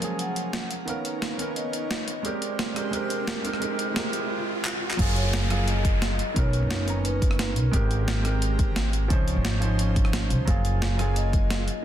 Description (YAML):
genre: liquid drum and bass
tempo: 175 BPM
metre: 4/4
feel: straight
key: F# major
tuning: A4 = 441 Hz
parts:
  - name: vibraphone with soft mallets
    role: melody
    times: 0.0-7.9, 10.3-11.8 s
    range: A#4 to F#5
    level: -36 LUFS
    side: left 2 dB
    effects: dub echo
  - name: dark baby grand piano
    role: accompaniment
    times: 0.0-11.8 s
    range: D#3 to A#5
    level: -30 LUFS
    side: right 2 dB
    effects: digital delay
  - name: airy breathy pad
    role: sustained chords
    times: 0.0-11.8 s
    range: E#3 to D#5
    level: -37 LUFS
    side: right 1 dB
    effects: chorus
  - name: breakbeat sampler-style drum kit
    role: drums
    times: 0.0-11.7 s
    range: crash cymbal, handclaps, hi-hat, rim click, snare drum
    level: -31 LUFS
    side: equal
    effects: none
  - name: riser and downlifter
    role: sound effects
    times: 1.2-7.7 s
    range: none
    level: -35 LUFS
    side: equal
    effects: none
  - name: upright bass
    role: bass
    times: 5.0-11.7 s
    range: F#1 to C#2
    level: -25 LUFS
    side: equal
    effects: none
  - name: electronic kick drum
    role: drums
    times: 5.0-11.4 s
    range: none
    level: -24 LUFS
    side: equal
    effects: none
room: light reverb, digital ambience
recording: dense, heavily limited modern master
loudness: -23 LUFS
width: side -11 dB against mid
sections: 0.0-5.0 A section; 5.0-11.8 B section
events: build-up 0.0-5.0; riser 1.2-5.0; drum fill 4.6-5.0; drop 5.0-11.8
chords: 0.0 F#maj9; 0.7 Bmaj9; 2.2 G#maj9; 3.6 G#maj13; 5.0 F#maj9; 6.2 Bmaj9; 7.7 G#maj9; 9.1 C#maj9; 10.5 F#maj9